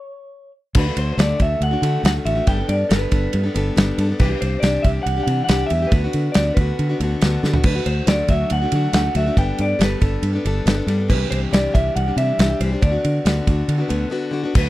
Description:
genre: folk rock and heartland rock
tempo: 139 BPM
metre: 4/4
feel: straight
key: D mixolydian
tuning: A4 = 440 Hz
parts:
  - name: electric guitar through a small old amp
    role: melody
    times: 0.0-14.7 s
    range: B4 to G5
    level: -24 LUFS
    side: equal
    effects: none
  - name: picked plugged-in steel-string acoustic guitar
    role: accompaniment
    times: 0.7-14.7 s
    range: C3 to A4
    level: -24 LUFS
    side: left 3 dB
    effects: none
  - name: natural country drum kit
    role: drums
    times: 0.7-14.7 s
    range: crash cymbal, kick drum, ride cymbal, snare drum, toms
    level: -20 LUFS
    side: equal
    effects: none
  - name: fingered electric bass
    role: bass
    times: 0.8-14.7 s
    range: G1 to D3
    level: -21 LUFS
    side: equal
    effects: none
room: little or no reverb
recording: dry, close 1970s-style studio recording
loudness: -16 LUFS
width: side -16 dB against mid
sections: 0.8-14.5 A section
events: stop 0.0-0.8; drum fill 7.4; break 14.1-14.5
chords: 0.0 N.C.; 0.8 D; 2.5 Gadd9; 4.2 Cadd9; 5.9 Bm/D; 7.7 D; 9.4 Gadd9; 11.1 Cadd9; 12.8 Bm/D

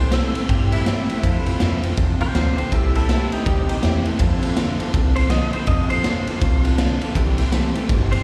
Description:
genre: rockabilly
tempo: 162 BPM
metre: 4/4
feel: swing 62% on 8ths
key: C major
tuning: A4 = 439 Hz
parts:
  - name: clean electric guitar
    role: melody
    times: 0.0-8.2 s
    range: Eb4 to Eb5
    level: -30 LUFS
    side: equal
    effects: ensemble chorus, slapback echo, tape echo
  - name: picked steel-string acoustic guitar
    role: accompaniment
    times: 0.0-8.2 s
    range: C3 to C5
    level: -32 LUFS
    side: equal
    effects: slapback echo
  - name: warm upright piano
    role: accompaniment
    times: 0.0-8.2 s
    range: C5 to C6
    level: -38 LUFS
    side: equal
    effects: slapback echo
  - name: electric guitar through a small old amp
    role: riff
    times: 0.0-8.2 s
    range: F2 to A3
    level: -30 LUFS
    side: equal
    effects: slapback echo
  - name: upright bass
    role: bass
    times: 0.0-8.2 s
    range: G1 to G2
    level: -23 LUFS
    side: equal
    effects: none
  - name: raw garage drum kit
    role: drums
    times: 0.1-8.2 s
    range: kick drum, ride cymbal, snare drum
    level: -24 LUFS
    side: equal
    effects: none
room: studio reverb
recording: live gig heard through the venue's PA, recital hall reverb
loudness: -20 LUFS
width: mono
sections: 0.0-8.2 A section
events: clean electric guitar solo 0.0-8.2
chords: 0.0 C6; 1.2 F6; 2.7 C6; 4.2 F6; 7.2 C6

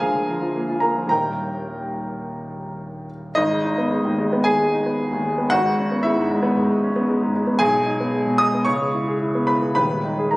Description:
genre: classical, virtuoso piano study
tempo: 106-115 BPM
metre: 4/4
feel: rubato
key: G# minor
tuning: A4 = 439 Hz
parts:
  - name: warm baby grand piano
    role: solo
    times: 0.0-10.4 s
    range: D#1 to D#6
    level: -19 LUFS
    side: equal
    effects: none
room: moderate recital hall reverb, RT60 1.4 s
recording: recorded on a phone in the room, club reverb, compression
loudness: -18 LUFS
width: side -21 dB against mid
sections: 0.0-3.4 A section; 3.4-10.4 B section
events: none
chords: 0.0 A#7/D; 1.1 D#; 3.4 G#m; 5.5 C#m7/G#; 7.6 G#m/B; 8.7 C#m7; 9.8 D#sus4

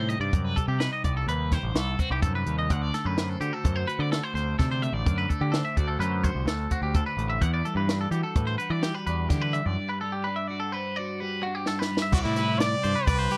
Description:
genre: math rock and midwest emo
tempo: 127 BPM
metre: 5/4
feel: straight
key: unclear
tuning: A4 = 439 Hz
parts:
  - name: twelve-string electric guitar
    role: accompaniment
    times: 0.0-13.4 s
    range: G2 to C5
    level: -36 LUFS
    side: equal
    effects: analog chorus
  - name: twangy electric guitar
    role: arpeggios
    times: 0.0-13.4 s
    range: F#4 to F#5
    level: -33 LUFS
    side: equal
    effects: spring reverb
  - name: growling picked electric bass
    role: bass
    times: 0.0-13.3 s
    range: A1 to E3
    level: -30 LUFS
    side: equal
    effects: overdrive
  - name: compact cocktail drum kit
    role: drums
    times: 0.1-13.4 s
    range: crash cymbal, hi-hat, kick drum, snare drum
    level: -29 LUFS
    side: equal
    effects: none
  - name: brilliant trumpet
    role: melody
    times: 12.1-13.4 s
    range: E4 to D5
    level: -30 LUFS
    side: equal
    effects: slapback echo
room: little or no reverb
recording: dry, close 1970s-style studio recording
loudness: -27 LUFS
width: mono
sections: 0.0-12.1 A section; 12.1-13.4 B section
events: break 9.8-12.1; drum fill 11.7-12.1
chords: 0.0 Cm6; 2.7 D7; 7.4 Em11; 9.8 Gmaj7; 12.1 Cmaj9

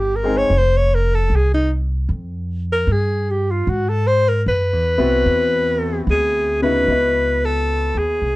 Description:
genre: jazz ballad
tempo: 76 BPM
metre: 4/4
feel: swing 67% on 8ths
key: unclear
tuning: A4 = 440 Hz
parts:
  - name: breathy alto saxophone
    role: melody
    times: 0.0-8.4 s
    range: Eb4 to Db5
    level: -18 LUFS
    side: equal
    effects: none
  - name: upright bass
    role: bass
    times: 0.0-8.4 s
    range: F1 to Ab2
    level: -20 LUFS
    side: equal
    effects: none
  - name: warm concert grand piano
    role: accompaniment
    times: 0.2-8.4 s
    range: Db3 to D#5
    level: -22 LUFS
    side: left 2 dB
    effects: none
room: light reverb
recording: dark, warm production, nothing above 10.7 kHz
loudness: -16 LUFS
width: side -19 dB against mid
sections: 0.0-6.9 A section; 6.9-8.4 B section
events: alto saxophone solo 0.0-6.9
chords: 0.5 Fsus2; 3.7 Ab7alt; 6.9 C#m11

